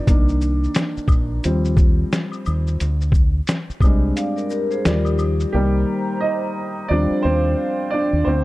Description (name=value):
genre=lo-fi hip hop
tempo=88 BPM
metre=4/4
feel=swing 59% on 16ths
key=Eb major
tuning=A4 = 441 Hz
part: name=warm upright piano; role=accompaniment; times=0.0-8.4 s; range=Eb3 to Eb5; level=-21 LUFS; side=equal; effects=low-pass filter
part: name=deep dub fingered electric bass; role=bass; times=0.1-8.4 s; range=Bb1 to Eb2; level=-20 LUFS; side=equal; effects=none
part: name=lo-fi sampler-style drum kit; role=drums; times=0.1-5.5 s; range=hi-hat, kick drum, shaker, snare drum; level=-17 LUFS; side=equal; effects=none
part: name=maracas and woodblock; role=percussion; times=0.1-5.4 s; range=none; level=-36 LUFS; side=left 4 dB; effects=none
part: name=vibraphone with medium mallets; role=second line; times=4.2-5.5 s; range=Eb4 to F5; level=-26 LUFS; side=left 3 dB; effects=low-pass filter, tape echo
part: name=hollow soft pad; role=sustained chords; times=5.7-8.4 s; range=C5 to D6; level=-30 LUFS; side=right 1 dB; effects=chorus, low-pass filter
room=small room ambience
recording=dark, warm production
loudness=-17 LUFS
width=side -18 dB against mid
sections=0.0-5.5 A section; 5.5-8.4 B section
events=upright piano solo 0.0-5.5, 5.5-8.4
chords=0.1 Cm7; 1.4 Eb69; 2.8 Bb13 (rootless); 4.8 Ebmaj9; 5.5 Cm7; 6.9 Eb69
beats=| 0.07 0.76 1.44 2.12 | 2.80 3.48 4.17 4.85 | 5.53 6.21 6.89 7.57 | 8.26